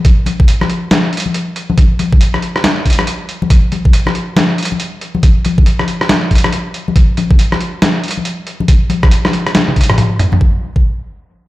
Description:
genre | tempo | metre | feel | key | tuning
dubstep | 139 BPM | 4/4 | swing 62% on 16ths, half-time | none | none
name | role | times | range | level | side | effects
electronic kick drum | drums | 0.0-10.8 s | none | -9 LUFS | equal | none
trip hop sampler-style drum kit | drums | 0.0-10.4 s | hi-hat, rim click, snare drum, toms | -15 LUFS | equal | low-pass filter on hats, low-pass filter on snare, low-pass filter on cymbals, low-pass filter on toms, low-pass filter on room
congas | percussion | 0.3-10.4 s | none | -18 LUFS | left 3 dB | dub echo
room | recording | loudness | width
light reverb, digital ambience | played on a big sound system in a bare room, large studio reverb | -11 LUFS | side -17 dB against mid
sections
0.0-10.4 A section; 10.4-11.5 B section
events
drop 0.0-10.4; drum fill 9.5-10.4; kick drops out 10.0-10.4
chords
none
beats
| 0.05 0.48 0.91 1.34 | 1.78 2.21 2.64 3.07 | 3.50 3.93 4.37 4.80 | 5.23 5.66 6.09 6.52 | 6.96 7.39 7.82 8.25 | 8.68 9.11 9.55 9.98 | 10.41

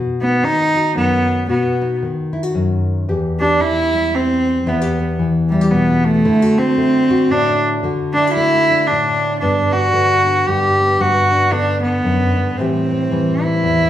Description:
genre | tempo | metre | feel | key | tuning
folk | 114 BPM | 3/4 | swing 60% on 8ths | unclear | A4 = 440 Hz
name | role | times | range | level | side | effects
nylon-string guitar | accompaniment | 0.0-13.9 s | E2 to G4 | -18 LUFS | left 2 dB | none
rich cello | melody | 0.2-13.9 s | G3 to G4 | -15 LUFS | right 1 dB | none
room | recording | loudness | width
wet large studio reverb, RT60 0.8 s | heard from further back in the room | -14 LUFS | side -11 dB against mid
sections
0.0-9.4 A section; 9.4-13.9 B section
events
cello solo 0.0-9.4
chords
0.0 B; 3.1 Em; 6.2 D; 9.4 Gmaj7; 12.6 Am7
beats
0.43 0.96 | 1.49 2.02 2.55 | 3.08 3.60 4.13 | 4.66 5.19 5.72 | 6.25 6.77 7.30 | 7.83 8.36 8.88 | 9.41 9.94 10.47 | 10.99 11.52 12.05 | 12.58 13.11 13.64

